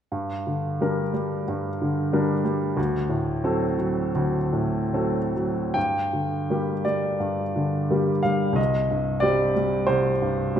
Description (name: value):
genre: classical, romantic character piece for solo piano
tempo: 66-94 BPM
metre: 4/4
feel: rubato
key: G minor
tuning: A4 = 441 Hz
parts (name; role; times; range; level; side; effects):
- clear baby grand piano; solo; 0.1-10.6 s; C2 to G5; -22 LUFS; equal; none
room: wet recital hall reverb, RT60 1.8 s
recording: minimal, uncompressed stereo recording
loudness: -22 LUFS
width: side -9 dB against mid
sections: 0.1-5.8 A section; 5.8-10.6 B section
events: none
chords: 0.1 Gm; 2.8 D7; 5.8 Gm; 8.6 Cm